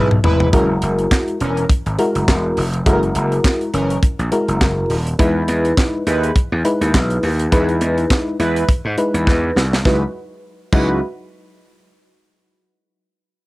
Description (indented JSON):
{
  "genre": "early-eighties boogie funk",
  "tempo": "103 BPM",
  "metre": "4/4",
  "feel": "swing 56% on 16ths",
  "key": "unclear",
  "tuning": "A4 = 440 Hz",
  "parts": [
    { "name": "analog synth brass", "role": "second line", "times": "0.0-11.0 s", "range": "E3 to B4", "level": "-22 LUFS", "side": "right 1 dB", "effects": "chorus, cassette tape" },
    { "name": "gritty slap bass", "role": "bass", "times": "0.0-11.0 s", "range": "D#1 to G#2", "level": "-19 LUFS", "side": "equal", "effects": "overdrive" },
    { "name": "tight funk drum kit", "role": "drums", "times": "0.1-10.9 s", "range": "crash cymbal, handclaps, hi-hat, kick drum, snare drum, toms", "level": "-17 LUFS", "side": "equal", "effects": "cassette tape" },
    { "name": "FM electric piano with tremolo", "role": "accompaniment", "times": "0.5-11.0 s", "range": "F#3 to B4", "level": "-19 LUFS", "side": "left 1 dB", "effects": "cassette tape, plate reverb" }
  ],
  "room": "light reverb",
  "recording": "home recording on cassette",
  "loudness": "-14 LUFS",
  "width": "side -20 dB against mid",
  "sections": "0.5-9.9 A section; 9.9-12.2 B section",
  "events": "drum fill 0.0-0.5, 9.3-9.9",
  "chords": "0.0 C#m7 (rootless); 0.5 F#9; 5.2 Emaj7; 9.9 C#m11"
}